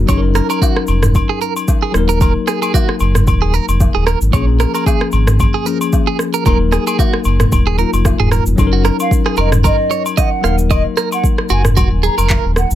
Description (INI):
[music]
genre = afrobeats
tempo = 113 BPM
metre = 4/4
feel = swing 55% on 16ths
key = unclear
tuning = A4 = 440 Hz
[part]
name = bell-like tine electric piano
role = accompaniment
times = 0.0-12.8 s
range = F3 to Bb4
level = -20 LUFS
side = left 7 dB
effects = none
[part]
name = sub bass with octave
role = bass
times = 0.0-12.8 s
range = Eb1 to Bb1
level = -14 LUFS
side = equal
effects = none
[part]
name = clean electric guitar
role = riff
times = 0.1-12.5 s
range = Gb4 to F5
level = -21 LUFS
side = right 10 dB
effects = tremolo, ping-pong delay
[part]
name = afro-pop drum kit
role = drums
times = 0.1-12.8 s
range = handclaps, kick drum, rim click, shaker, toms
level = -16 LUFS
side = equal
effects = overdrive
[part]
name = agogo bells and woodblock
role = percussion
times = 0.1-12.4 s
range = none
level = -25 LUFS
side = left 5 dB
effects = none
[part]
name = mellow hollow concert flute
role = melody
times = 9.0-12.7 s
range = Eb5 to Bb5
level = -20 LUFS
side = right 2 dB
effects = plate reverb
[sound]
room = light reverb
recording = none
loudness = -12 LUFS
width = side -12 dB against mid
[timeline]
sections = 0.0-8.6 A section; 8.6-12.8 B section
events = none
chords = 0.1 Gb6; 1.9 Ebm; 4.3 Bbm7; 6.5 Ebm; 8.6 Gb6; 10.4 Ebm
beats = | 0.09 0.62 1.15 1.68 | 2.21 2.74 3.27 3.80 | 4.33 4.86 5.39 5.93 | 6.46 6.99 7.52 8.05 | 8.58 9.11 9.64 10.17 | 10.71 11.24 11.77 12.30